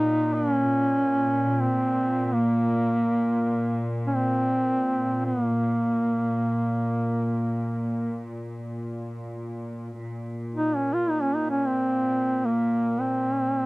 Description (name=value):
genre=caucasian folk, Caucasian lament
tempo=free time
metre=none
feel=none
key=Bb minor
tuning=A4 = 440 Hz
part: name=mellow duduk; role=melody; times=0.0-13.7 s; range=Bb3 to F4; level=-23 LUFS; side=equal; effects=cassette tape
part: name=warm chamber cello section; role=drone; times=0.0-13.7 s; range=Bb2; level=-29 LUFS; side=equal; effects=cassette tape
room=moderate booth ambience, RT60 0.2 s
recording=home recording on cassette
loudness=-22 LUFS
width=side -24 dB against mid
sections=0.0-13.7 A section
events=none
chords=none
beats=free time